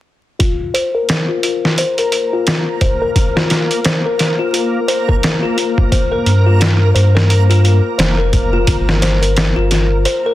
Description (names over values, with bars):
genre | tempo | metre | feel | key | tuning
trip hop | 87 BPM | 4/4 | swing 59% on 16ths | unclear | A4 = 439 Hz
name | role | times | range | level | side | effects
music box | arpeggios | 0.4-10.3 s | F4 to C5 | -18 LUFS | left 4 dB | low-pass filter, ping-pong delay
trip hop sampler-style drum kit | drums | 0.4-10.2 s | hi-hat, kick drum, snare drum | -16 LUFS | equal | studio ambience
backwards swelling texture | texture | 1.4-10.3 s | Bb3 to Bb4 | -23 LUFS | right 2 dB | built-in reverb
warm sub bass | bass | 6.3-10.1 s | F1 to G2 | -12 LUFS | equal | none
room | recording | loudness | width
light reverb | dense, heavily limited modern master, vinyl crackle | -12 LUFS | side -14 dB against mid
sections
0.4-10.3 A section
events
filter sweep on music box 0.4-10.3; kick drops out 10.1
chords
0.4 F5; 5.9 Fsus24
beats
| 0.40 1.09 1.78 2.47 | 3.16 3.85 4.54 5.23 | 5.92 6.61 7.30 7.99 | 8.68 9.37 10.06